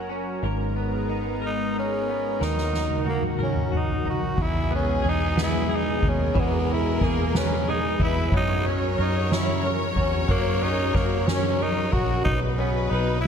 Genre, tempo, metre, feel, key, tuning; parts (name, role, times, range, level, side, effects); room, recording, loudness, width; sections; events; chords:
six-eight pop ballad; 61 BPM (dotted quarters); 6/8; straight; A4 = 439 Hz
direct-recorded clean electric guitar; accompaniment; 0.0-13.3 s; G#2 to B4; -31 LUFS; equal; double-tracked left and right, slapback echo
lush unison pad; sustained chords; 0.0-13.3 s; B2 to D#5; -30 LUFS; equal; chorus
vintage muted fingered electric bass; bass; 0.0-13.3 s; F#1 to F#2; -28 LUFS; equal
growling tenor saxophone; melody; 1.5-13.3 s; A#3 to F#4; -28 LUFS; equal; slapback echo, tape echo
soft-mallet drum kit; drums; 2.4-13.3 s; crash cymbal, kick drum, ride cymbal, snare drum, toms; -27 LUFS; equal
bright studio violin section; second line; 4.4-13.3 s; G#4 to C#5; -32 LUFS; left 2 dB; slapback echo, tape echo
moderate concert hall reverb, RT60 2.4 s; big arena sound; -21 LUFS; side -7 dB against mid
0.0-4.4 A section; 4.4-13.3 B section
drum fill 2.4-4.4
0.4 G#madd9; 2.4 D#m; 4.4 E; 8.3 F#; 12.3 B